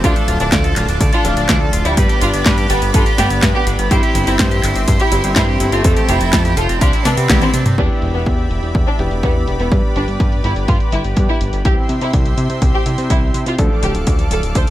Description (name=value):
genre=italo disco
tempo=124 BPM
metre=4/4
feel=straight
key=unclear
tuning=A4 = 436 Hz
part: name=warm studio violin section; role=melody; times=0.0-14.6 s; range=G3 to C5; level=-21 LUFS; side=equal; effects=tape echo
part: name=lush unison pad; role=sustained chords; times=0.0-14.7 s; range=F4 to D6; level=-25 LUFS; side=equal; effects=chorus
part: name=electric guitar with an envelope filter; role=arpeggios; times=0.0-7.8 s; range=B3 to D5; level=-24 LUFS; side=right 2 dB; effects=tape echo
part: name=clear concert grand piano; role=stabs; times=0.0-14.7 s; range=F3 to C5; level=-24 LUFS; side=left 1 dB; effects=none
part: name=fat analog bass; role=bass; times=0.0-14.7 s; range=D1 to C3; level=-19 LUFS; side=equal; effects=none
part: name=electronic kick drum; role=drums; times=0.0-14.7 s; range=none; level=-17 LUFS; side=equal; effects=none
part: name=house drum kit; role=drums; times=0.0-14.7 s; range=crash cymbal, handclaps, hi-hat, snare drum, toms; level=-20 LUFS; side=equal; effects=low-pass filter on hats, low-pass filter on snare, low-pass filter on toms, low-pass filter on cymbals
room=little or no reverb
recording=none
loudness=-13 LUFS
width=side -14 dB against mid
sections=0.0-7.8 A section; 7.8-14.7 B section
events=drum fill 7.3-7.8; band accent 7.3; filter sweep on drum 7.8-14.7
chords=0.0 Dm; 2.0 G; 3.9 C/G; 5.8 Fadd9; 6.8 Cadd9; 7.8 Em7; 9.7 G; 11.7 C; 13.6 Dm